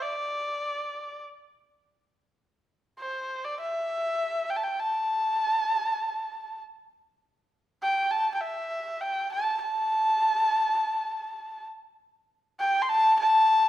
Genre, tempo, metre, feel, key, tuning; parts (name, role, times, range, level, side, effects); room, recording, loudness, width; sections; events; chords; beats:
chinese traditional; free time; A yu mode; A4 = 440 Hz
warm erhu; solo; 0.0-13.7 s; C5 to C6; -24 LUFS; equal
moderate recital hall reverb, RT60 1.3 s; -24 LUFS; side -13 dB against mid
0.0-7.2 A section; 7.2-13.7 B section
free time